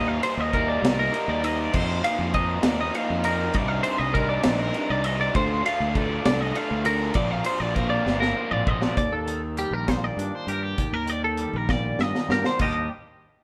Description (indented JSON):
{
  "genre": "math rock and midwest emo",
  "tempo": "66 BPM (dotted quarters)",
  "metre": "6/8",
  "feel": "straight",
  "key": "Eb lydian",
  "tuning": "A4 = 439 Hz",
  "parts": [
    { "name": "twelve-string electric guitar", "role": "arpeggios", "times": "0.0-12.9 s", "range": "G4 to F5", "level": "-29 LUFS", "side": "equal", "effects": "none" },
    { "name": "raw garage guitar", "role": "riff", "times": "0.0-9.0 s", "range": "Eb2 to A4", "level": "-30 LUFS", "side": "equal", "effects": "overdrive" },
    { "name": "growling fingered electric bass", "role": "bass", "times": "0.0-12.9 s", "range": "G1 to G2", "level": "-31 LUFS", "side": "equal", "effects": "overdrive" },
    { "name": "modern studio drum kit", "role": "drums", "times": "0.2-12.7 s", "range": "crash cymbal, hi-hat, kick drum, ride cymbal, snare drum, toms", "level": "-30 LUFS", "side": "equal", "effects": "none" },
    { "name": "twangy electric guitar", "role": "accompaniment", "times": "9.0-12.9 s", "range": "Eb2 to G4", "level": "-35 LUFS", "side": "equal", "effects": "none" }
  ],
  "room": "moderate stone room reverb, RT60 1.2 s",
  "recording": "band playing live in one room",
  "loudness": "-24 LUFS",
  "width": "mono",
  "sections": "0.0-9.0 A section; 9.0-12.6 B section",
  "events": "drum fill 8.1-9.0, 11.7-12.6",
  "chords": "0.0 Eb6; 1.7 F7sus4; 3.5 Cm9; 5.3 Dm7; 7.2 Bb69; 9.0 Ebmaj7"
}